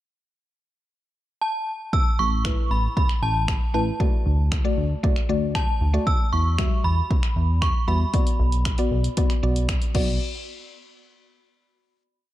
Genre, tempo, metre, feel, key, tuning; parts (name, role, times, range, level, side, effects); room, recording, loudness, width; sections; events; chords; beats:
dance-pop; 116 BPM; 4/4; straight; B minor; A4 = 439 Hz
synth chime; melody; 1.4-9.4 s; A5 to E6; -27 LUFS; right 1 dB; ensemble chorus
punchy analog drum machine; drums; 1.9-10.1 s; crash cymbal, finger snaps, hi-hat, kick drum; -23 LUFS; equal
chorused synth bass; bass; 2.2-10.2 s; A1 to E2; -22 LUFS; equal; sidechain pumping
mallet-like synth pluck; accompaniment; 2.4-10.2 s; G3 to E5; -28 LUFS; left 2 dB; chorus, sidechain pumping
digital ambience; dark, warm production; -20 LUFS; side -14 dB against mid
0.0-1.9 pickup bar; 1.9-10.2 verse; 10.2-12.3 final hit
0.0 N.C.; 1.9 Asus2; 4.0 D; 6.1 Emadd9; 8.1 Bm; 10.2 N.C.
0.38 0.90 1.41 | 1.93 2.45 2.96 3.48 | 4.00 4.52 5.03 5.55 | 6.07 6.59 7.10 7.62 | 8.14 8.65 9.17 9.69